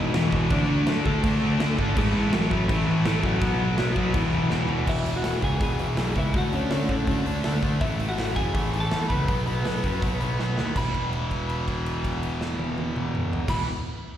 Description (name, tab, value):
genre	punk rock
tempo	163 BPM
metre	4/4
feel	straight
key	E major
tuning	A4 = 436 Hz
part	lightly driven lead guitar	melody	0.0-13.6 s	E3 to B5	-28 LUFS	equal	slapback echo
part	tight distorted guitar	riff	0.0-13.7 s	E2 to D4	-30 LUFS	equal	distortion, slapback echo
part	tight distorted guitar	riff	0.0-4.9 s	E2 to D4	-30 LUFS	equal	distortion, slapback echo
part	fuzz picked electric bass	bass	0.0-13.6 s	E1 to A2	-27 LUFS	equal	overdrive
part	big rock drum kit	drums	0.1-13.6 s	crash cymbal, hi-hat, kick drum, snare drum, toms	-29 LUFS	equal	none
room	small room reverb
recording	live gig heard through the venue's PA, recital hall reverb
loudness	-22 LUFS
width	side -11 dB against mid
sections	0.0-4.9 A section; 4.9-10.8 B section; 10.8-13.7 C section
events	drum fill 4.5-4.9, 10.4-10.8; held note 10.8-13.5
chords	0.0 E5; 0.5 D5; 2.0 A5; 3.4 B5; 4.2 E5; 4.9 E; 6.3 D; 7.8 A5; 9.3 B5; 10.8 E5